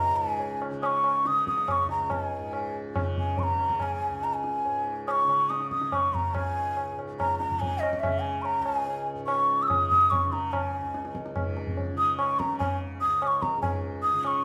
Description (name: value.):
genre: indian classical, Hindustani.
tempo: 143 BPM.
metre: 5/4.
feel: straight.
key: unclear.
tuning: A4 = 439 Hz.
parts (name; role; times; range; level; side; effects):
breathy hollow bansuri; melody; 0.0-14.4 s; D#5 to E6; -28 LUFS; equal; none.
tanpura; drone; 0.0-14.4 s; C#2 to C#3; -40 LUFS; equal; none.
tabla; percussion; 0.4-14.4 s; none; -35 LUFS; equal; none.
room: wet large studio reverb, RT60 1.1 s.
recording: band playing live in one room.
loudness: -27 LUFS.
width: mono.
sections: 0.0-14.4 A section.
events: speeding up 0.0-14.4.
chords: none.